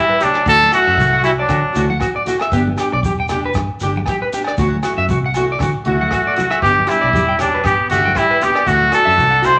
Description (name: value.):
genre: highlife guitar band.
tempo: 117 BPM.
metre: 4/4.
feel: swing 55% on 16ths.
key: G major.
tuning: A4 = 440 Hz.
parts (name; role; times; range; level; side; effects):
bright trumpet; melody; 0.0-1.9, 5.9-9.6 s; D4 to C5; -16 LUFS; equal; none.
raspy tenor saxophone; second line; 0.0-1.9, 5.9-9.6 s; F#3 to E4; -30 LUFS; equal; none.
electric guitar at the edge of break-up; arpeggios; 0.0-9.5 s; F#4 to G5; -23 LUFS; equal; none.
picked steel-string acoustic guitar; accompaniment; 0.2-9.6 s; E3 to G4; -28 LUFS; equal; none.
compact cocktail drum kit; drums; 0.2-9.6 s; hi-hat, kick drum, rim click; -29 LUFS; equal; none.
congas; percussion; 0.2-9.6 s; none; -31 LUFS; equal; none.
shekere; percussion; 0.2-9.6 s; none; -32 LUFS; equal; none.
agogo bells; percussion; 0.4-9.6 s; none; -31 LUFS; equal; none.
fingered electric bass; bass; 0.5-9.6 s; E1 to D3; -24 LUFS; equal; none.
room: wet club reverb, RT60 0.9 s.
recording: none.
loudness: -16 LUFS.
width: mono.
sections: 0.0-9.6 A section.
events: none.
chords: 0.5 Dadd9; 2.5 G; 4.6 Dadd9; 6.6 G; 8.7 Dadd9.